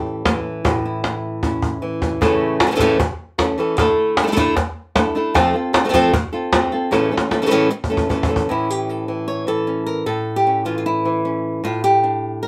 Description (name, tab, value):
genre	flamenco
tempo	153 BPM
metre	4/4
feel	straight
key	unclear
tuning	A4 = 440 Hz
part	flamenco guitar	melody	0.0-12.5 s	A2 to C#5	-20 LUFS	equal	none
part	cajon	percussion	0.1-8.5 s	none	-22 LUFS	equal	none
room	moderate studio ambience, RT60 0.5 s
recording	band playing live in one room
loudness	-19 LUFS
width	mono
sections	0.0-2.2 A section; 2.2-8.5 B section; 8.5-12.5 C section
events	drum fill 1.0-2.2, 6.9-8.5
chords	0.0 A; 3.8 Dsus2; 5.4 F; 6.9 A; 11.6 Bb/A (rootless)